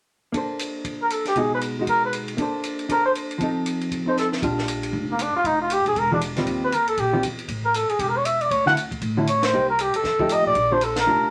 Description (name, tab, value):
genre	jazz, small-group swing and bop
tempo	235 BPM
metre	4/4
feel	swing 60% on 8ths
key	Bb major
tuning	A4 = 440 Hz
part	hollow-body jazz guitar	accompaniment	0.3-11.3 s	B2 to C5	-28 LUFS	equal	none
part	compact cocktail drum kit	drums	0.3-11.0 s	hi-hat, kick drum, ride cymbal, snare drum	-34 LUFS	equal	none
part	trumpet with bucket mute	melody	1.0-11.3 s	Bb3 to F#5	-23 LUFS	equal	none
part	upright bass	bass	4.4-11.3 s	E1 to A2	-33 LUFS	equal	none
room	wet studio ambience, RT60 0.5 s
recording	none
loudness	-23 LUFS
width	mono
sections	0.3-4.4 A section; 4.4-11.3 B section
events	drum fill 4.2; band accent 9.4, 10.9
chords	0.3 Bbmaj9; 1.4 B6; 2.4 Bbmaj9; 3.4 F7; 4.4 Bb6; 5.4 F7sus2; 6.0 E9; 6.5 Eb69; 7.5 A5; 8.5 Dmaj9; 9.5 Cm7; 10.0 F9; 10.6 Bb6